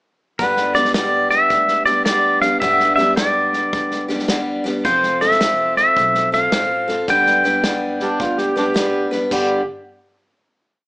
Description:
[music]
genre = honky-tonk and classic country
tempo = 108 BPM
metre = 4/4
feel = swing 64% on 8ths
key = G mixolydian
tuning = A4 = 440 Hz
[part]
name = pedal steel guitar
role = melody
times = 0.4-8.7 s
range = B4 to G5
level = -15 LUFS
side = equal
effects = none
[part]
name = picked steel-string acoustic guitar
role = accompaniment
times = 0.4-9.6 s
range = G2 to B4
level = -21 LUFS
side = left 1 dB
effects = none
[part]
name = upright bass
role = bass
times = 0.4-9.6 s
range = F1 to D2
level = -36 LUFS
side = equal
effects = none
[part]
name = natural country drum kit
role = drums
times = 0.4-9.5 s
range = crash cymbal, hi-hat, kick drum, snare drum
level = -24 LUFS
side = equal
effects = none
[part]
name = overdriven harmonica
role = second line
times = 8.0-9.6 s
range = G3 to G4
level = -20 LUFS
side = right 1 dB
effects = none
[sound]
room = moderate studio reverb, RT60 0.8 s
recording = small speaker sound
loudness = -14 LUFS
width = side -24 dB against mid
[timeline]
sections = 0.4-9.3 verse; 9.3-10.9 final chord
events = none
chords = 0.4 G; 4.9 F; 7.1 G

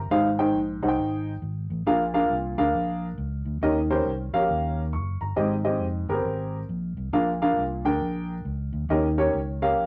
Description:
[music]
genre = uptempo gospel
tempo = 137 BPM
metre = 4/4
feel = swing 63% on 8ths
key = unclear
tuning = A4 = 440 Hz
[part]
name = warm upright piano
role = accompaniment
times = 0.0-9.9 s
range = Ab2 to Db6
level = -26 LUFS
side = equal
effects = none
[part]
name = fingered electric bass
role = bass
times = 0.0-9.9 s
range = F1 to Eb2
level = -32 LUFS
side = equal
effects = none
[sound]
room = moderate studio reverb, RT60 0.6 s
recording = none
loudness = -26 LUFS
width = mono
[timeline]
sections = 0.0-9.9 A section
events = none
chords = 0.1 Fm7/Ab (rootless); 1.9 Bb7; 3.6 Eb7; 5.4 Abmaj7; 7.1 Bb7; 8.9 Eb7

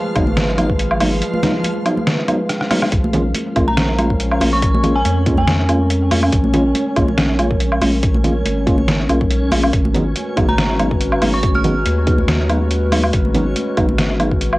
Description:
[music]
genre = deep dubstep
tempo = 141 BPM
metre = 4/4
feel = swing 54% on 16ths, half-time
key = Bb phrygian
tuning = A4 = 439 Hz
[part]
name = dark analog pad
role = sustained chords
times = 0.0-14.6 s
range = Ab3 to Cb5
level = -23 LUFS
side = left 1 dB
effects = chorus, cassette tape
[part]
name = backwards swelling texture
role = texture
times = 0.0-14.6 s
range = F3 to F5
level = -25 LUFS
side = equal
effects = built-in reverb, cassette tape
[part]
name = tine electric piano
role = stabs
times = 0.2-14.3 s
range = Gb3 to F4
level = -20 LUFS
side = equal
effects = auto-pan, cassette tape, dub echo
[part]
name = soft dub sub bass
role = bass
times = 0.2-14.6 s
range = Ab1 to F2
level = -20 LUFS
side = equal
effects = none
[part]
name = electronic kick drum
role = drums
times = 0.2-14.4 s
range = none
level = -19 LUFS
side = equal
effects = cassette tape
[part]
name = trip hop sampler-style drum kit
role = drums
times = 0.2-14.6 s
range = hi-hat, rim click, snare drum, woodblock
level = -19 LUFS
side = equal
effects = cassette tape
[part]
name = congas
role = percussion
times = 0.3-14.3 s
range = none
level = -25 LUFS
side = right 1 dB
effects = dub echo
[part]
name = dark detuned synth bell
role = melody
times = 3.7-5.7, 10.5-12.1 s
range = Ab5 to F6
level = -25 LUFS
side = equal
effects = chorus, tremolo, cassette tape, dub echo
[sound]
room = moderate booth ambience, RT60 0.2 s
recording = home recording on cassette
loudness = -14 LUFS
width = side -19 dB against mid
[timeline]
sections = 0.0-14.6 A section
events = drum fill 2.5-2.9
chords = 0.0 Abm7; 2.9 Bbm7; 9.7 Abm7

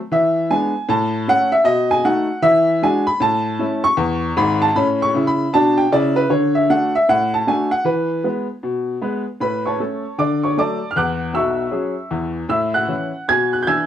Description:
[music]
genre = jazz, stride piano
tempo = 155 BPM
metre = 4/4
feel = swing 63% on 8ths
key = A major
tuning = A4 = 440 Hz
[part]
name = clear upright piano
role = solo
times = 0.1-13.9 s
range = G#1 to G#6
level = -16 LUFS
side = equal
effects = none
[sound]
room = moderate studio reverb, RT60 0.6 s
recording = worn, warbling old tape, cassette tape, warbly pitch drift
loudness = -16 LUFS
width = side -10 dB against mid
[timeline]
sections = 0.0-9.4 A section; 9.4-13.9 B section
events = none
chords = 0.1 E7; 0.9 A; 1.7 B7; 2.4 E9; 3.2 A; 6.3 D; 7.9 E; 9.4 A; 10.2 D; 11.0 E13; 12.5 A; 13.3 E7/B

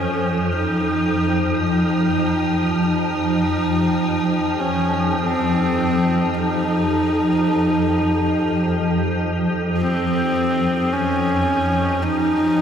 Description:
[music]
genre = dark ambient drone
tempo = 52 BPM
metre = 4/4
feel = straight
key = unclear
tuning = A4 = 440 Hz
[part]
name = rich horsehead fiddle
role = melody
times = 0.0-12.6 s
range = C4 to Eb4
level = -21 LUFS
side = equal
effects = tape echo
[part]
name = granular cloud pad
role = sustained chords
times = 0.0-12.6 s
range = F3 to Ab5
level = -29 LUFS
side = equal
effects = built-in reverb
[part]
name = swarming drone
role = drone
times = 0.0-12.6 s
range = F2 to F3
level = -20 LUFS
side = equal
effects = built-in reverb
[sound]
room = wet cathedral reverb, RT60 6.4 s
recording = none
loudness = -17 LUFS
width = side -8 dB against mid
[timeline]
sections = 0.0-12.6 A section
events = fade-in on horsehead fiddle 0.0-12.6; fade-out on ambient pad 0.0-12.6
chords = 0.0 Fm; 0.5 Cm/F

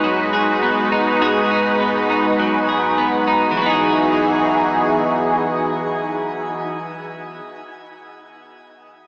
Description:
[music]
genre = dream pop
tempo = 102 BPM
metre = 4/4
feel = straight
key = E major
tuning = A4 = 440 Hz
[part]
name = lush unison pad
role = sustained chords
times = 0.0-6.7 s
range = E3 to B4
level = -18 LUFS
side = equal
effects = chorus, phaser
[part]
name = twelve-string electric guitar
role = arpeggios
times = 0.0-7.5 s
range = G#2 to G#4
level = -20 LUFS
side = equal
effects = lush chorus, digital delay
[sound]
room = wet shimmer reverb, RT60 6.1 s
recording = small speaker sound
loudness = -15 LUFS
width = side -36 dB against mid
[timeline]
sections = 0.0-3.6 A section; 3.6-5.9 B section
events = none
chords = 0.0 G#m7; 3.6 Emaj9

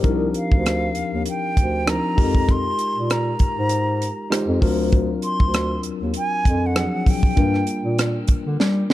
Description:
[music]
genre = lush 1970s-style soul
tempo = 98 BPM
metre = 4/4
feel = swing 54% on 16ths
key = C minor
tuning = A4 = 441 Hz
[part]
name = tine electric piano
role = accompaniment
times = 0.0-8.9 s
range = F3 to C5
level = -25 LUFS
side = moving between left 8 dB and right 1 dB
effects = auto-pan
[part]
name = dark bass clarinet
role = bass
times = 0.0-8.9 s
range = C2 to G3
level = -23 LUFS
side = equal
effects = none
[part]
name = tight funk drum kit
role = drums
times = 0.0-8.9 s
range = hi-hat, kick drum, rim click, snare drum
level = -20 LUFS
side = equal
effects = none
[part]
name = bright silver concert flute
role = melody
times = 0.4-8.0 s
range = F5 to C6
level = -26 LUFS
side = right 1 dB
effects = none
[sound]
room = small room ambience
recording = dark, warm production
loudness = -18 LUFS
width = side -15 dB against mid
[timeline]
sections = 0.0-8.9 A section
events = drum fill 8.6-8.9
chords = 0.0 Cm11; 2.2 Fm11; 4.6 D7alt; 7.4 Gm7

